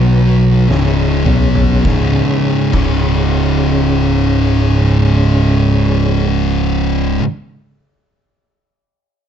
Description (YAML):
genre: stoner and doom metal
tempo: 51 BPM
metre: 4/4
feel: straight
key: unclear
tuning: A4 = 440 Hz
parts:
  - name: tonewheel organ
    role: sustained chords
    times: 0.0-6.3 s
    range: B3 to C#5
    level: -23 LUFS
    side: equal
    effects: slow rotary speaker, chorus vibrato
  - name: thick fuzz guitar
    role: riff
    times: 0.0-7.2 s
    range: C#2 to B3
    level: -16 LUFS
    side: left 7 dB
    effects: distortion
  - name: thick fuzz guitar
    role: riff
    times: 0.0-7.2 s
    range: C#2 to B3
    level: -16 LUFS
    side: right 7 dB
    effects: distortion
  - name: overdriven fingered electric bass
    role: bass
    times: 0.0-7.2 s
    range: C#1 to B1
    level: -16 LUFS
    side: equal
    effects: none
  - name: oversized low-tuned drum kit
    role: drums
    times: 0.7-3.1 s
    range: crash cymbal, kick drum, snare drum, toms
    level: -21 LUFS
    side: equal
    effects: none
room: light reverb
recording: dark, warm production, nothing above 7.8 kHz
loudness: -11 LUFS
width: side -8 dB against mid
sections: 0.0-1.9 A section; 1.9-6.6 B section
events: slowing down 0.0-1.9; drum fill 0.7-1.9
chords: 0.0 B5; 0.7 C#5